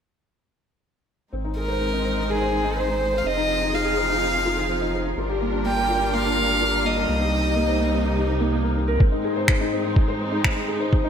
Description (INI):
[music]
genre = piano and strings electronica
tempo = 125 BPM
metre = 4/4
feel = straight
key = unclear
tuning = A4 = 441 Hz
[part]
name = warm symphonic string section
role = sustained chords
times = 1.3-11.1 s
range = F2 to Bb4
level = -28 LUFS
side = right 1 dB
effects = sidechain pumping
[part]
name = felt-muted upright piano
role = riff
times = 1.3-11.1 s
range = Bb3 to C5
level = -26 LUFS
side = left 1 dB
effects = wide subtle chorus, tape echo
[part]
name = warm sub bass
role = bass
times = 1.3-9.0 s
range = F1 to C2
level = -27 LUFS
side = equal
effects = sidechain pumping
[part]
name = rich violin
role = melody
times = 1.6-8.3 s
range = Ab4 to G5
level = -24 LUFS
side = equal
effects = tape echo
[part]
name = electronic kick drum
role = drums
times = 9.0-11.0 s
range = none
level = -18 LUFS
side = equal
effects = none
[part]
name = finger snaps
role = drums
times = 9.5-10.5 s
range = none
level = -25 LUFS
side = equal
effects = high-pass filter on snare, low-pass filter on snare, high-pass filter on room, low-pass filter on room
[sound]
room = wet lush hall reverb, RT60 2.1 s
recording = dreamy mix soaked in reverb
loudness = -20 LUFS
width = side -8 dB against mid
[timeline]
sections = 1.3-9.0 A section; 9.0-11.1 B section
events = build-up 9.0-11.1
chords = 1.3 Ab; 3.2 Fm7; 5.2 Gm7; 7.1 Cm7; 9.0 Ab